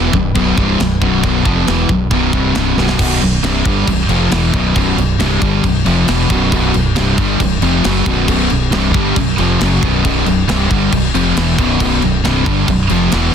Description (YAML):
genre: heavy metal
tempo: 136 BPM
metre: 4/4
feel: straight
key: B minor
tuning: A4 = 441 Hz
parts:
  - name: dark studio string section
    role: sustained chords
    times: 0.0-3.0 s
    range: F#3 to B4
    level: -32 LUFS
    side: equal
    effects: none
  - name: crunchy overdriven guitar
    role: riff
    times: 0.0-13.3 s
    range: B1 to G3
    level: -20 LUFS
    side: right 1 dB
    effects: none
  - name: heavy high-gain guitar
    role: riff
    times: 0.0-13.3 s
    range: B1 to G3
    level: -18 LUFS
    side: right 10 dB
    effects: distortion
  - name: sludgy distorted guitar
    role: riff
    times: 0.0-13.3 s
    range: B1 to G3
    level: -18 LUFS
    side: left 11 dB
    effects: overdrive
  - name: growling fingered electric bass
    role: bass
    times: 0.0-13.3 s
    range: B0 to G1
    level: -18 LUFS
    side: equal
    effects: overdrive
  - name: tight metal drum kit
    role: drums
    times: 0.1-13.2 s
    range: china cymbal, crash cymbal, kick drum, snare drum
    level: -18 LUFS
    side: equal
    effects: soft clipping on kick
room: light reverb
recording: dense, heavily limited modern master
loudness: -11 LUFS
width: side -8 dB against mid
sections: 0.0-3.0 A section; 3.0-13.3 B section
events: drum fill 2.8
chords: 0.0 Bm